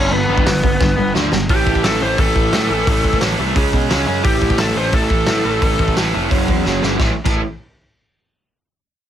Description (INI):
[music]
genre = punk rock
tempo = 174 BPM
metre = 4/4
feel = straight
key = A mixolydian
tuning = A4 = 441 Hz
[part]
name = biting lead guitar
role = melody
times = 0.0-5.9 s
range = B3 to C#5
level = -20 LUFS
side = left 1 dB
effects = overdrive
[part]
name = cranked stack guitar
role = riff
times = 0.0-7.4 s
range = F#2 to C#4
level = -18 LUFS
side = right 1 dB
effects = overdrive
[part]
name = fuzz picked electric bass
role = bass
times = 0.0-7.4 s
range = F1 to B2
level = -22 LUFS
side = equal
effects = overdrive
[part]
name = loose indie drum kit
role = drums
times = 0.4-7.3 s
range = crash cymbal, hi-hat, kick drum, snare drum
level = -18 LUFS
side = equal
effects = none
[sound]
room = little or no reverb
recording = none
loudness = -14 LUFS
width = side -10 dB against mid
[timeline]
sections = 0.0-1.5 A section; 1.5-7.0 B section; 7.0-8.4 C section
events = drum fill 0.8-1.5, 6.7-7.0; lead electric guitar solo 1.5-7.0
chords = 0.0 G; 1.5 A5; 3.6 C#5; 4.2 A5; 6.3 F#5; 7.0 A5